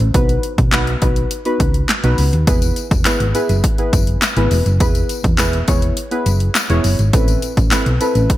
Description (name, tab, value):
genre	dance-pop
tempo	103 BPM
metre	4/4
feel	straight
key	E major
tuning	A4 = 438 Hz
part	hollow-body short-scale fingered electric bass	bass	0.0-8.3 s	E1 to B2	-17 LUFS	equal	sidechain pumping
part	house drum kit	drums	0.0-8.4 s	handclaps, hi-hat, kick drum, snare drum	-17 LUFS	equal	gated reverb
part	deep mellow chord stab	accompaniment	0.1-8.3 s	B3 to C#5	-20 LUFS	equal	chorus, sidechain pumping
part	tambourine	percussion	2.5-8.3 s	none	-29 LUFS	left 10 dB	none
room	light reverb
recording	bright 1980s-style digital production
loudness	-13 LUFS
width	side -15 dB against mid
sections	0.0-8.4 A section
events	none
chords	0.1 B; 2.5 E; 7.1 Amadd9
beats	| 0.14 0.73 1.31 1.89 | 2.47 3.06 3.64 4.22 | 4.80 5.39 5.97 6.55 | 7.13 7.72 8.30